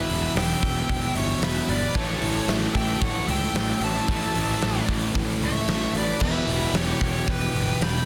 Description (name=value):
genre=hard rock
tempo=113 BPM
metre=4/4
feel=straight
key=E dorian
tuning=A4 = 438 Hz
part: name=bluesy overdriven lead guitar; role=melody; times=0.0-8.1 s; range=B4 to B5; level=-33 LUFS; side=equal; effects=distortion, slapback echo, plate reverb
part: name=octave-fuzz lead guitar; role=second line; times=0.0-8.1 s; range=G4 to G5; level=-36 LUFS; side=equal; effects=distortion, plate reverb
part: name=cranked stack guitar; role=riff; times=0.0-8.1 s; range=E2 to A3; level=-36 LUFS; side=equal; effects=none
part: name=cranked stack guitar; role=riff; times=0.0-8.1 s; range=E2 to A3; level=-33 LUFS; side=equal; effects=overdrive
part: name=sludgy distorted guitar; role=riff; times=0.0-8.1 s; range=E2 to A3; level=-35 LUFS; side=equal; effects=none
part: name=fuzz picked electric bass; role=bass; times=0.1-8.0 s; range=E1 to C#2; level=-31 LUFS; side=equal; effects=overdrive
part: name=big rock drum kit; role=drums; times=0.1-7.9 s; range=crash cymbal, hi-hat, kick drum, snare drum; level=-29 LUFS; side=equal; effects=soft clipping on kick
part: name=tonewheel organ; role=sustained chords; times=6.2-8.1 s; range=E3 to G4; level=-41 LUFS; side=equal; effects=none
room=light reverb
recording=dense, heavily limited modern master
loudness=-24 LUFS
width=mono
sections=0.0-8.1 A section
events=none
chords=0.0 Em; 2.0 A; 6.2 Em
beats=0.35 0.89 1.42 | 1.95 2.48 3.02 3.55 | 4.08 4.62 5.15 5.68 | 6.21 6.75 7.28 7.81